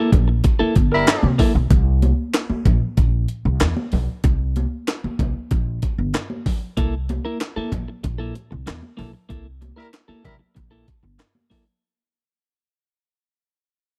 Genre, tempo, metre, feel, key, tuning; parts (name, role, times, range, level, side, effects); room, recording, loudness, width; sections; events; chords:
funk; 95 BPM; 4/4; straight; C mixolydian; A4 = 440 Hz
clean electric guitar; accompaniment; 0.0-1.6, 6.8-11.7 s; Bb3 to Bb4; -26 LUFS; equal
upright bass; bass; 0.1-11.2 s; G1 to C3; -23 LUFS; equal
breakbeat sampler-style drum kit; drums; 0.1-11.7 s; handclaps, hi-hat, kick drum, snare drum; -22 LUFS; equal
congas; percussion; 0.1-11.7 s; -30 LUFS; equal
warm horn section; second line; 0.9-1.3, 9.8-10.3 s; G3 to Bb4; -22 LUFS; equal
little or no reverb; dry, close 1970s-style studio recording; -20 LUFS; mono
0.0-1.7 A section; 1.7-11.8 B section
band accent 0.0-1.7, 9.3-11.8; break 1.7-6.8; fade-out 1.7-11.8
0.0 C6 (rootless); 1.7 C6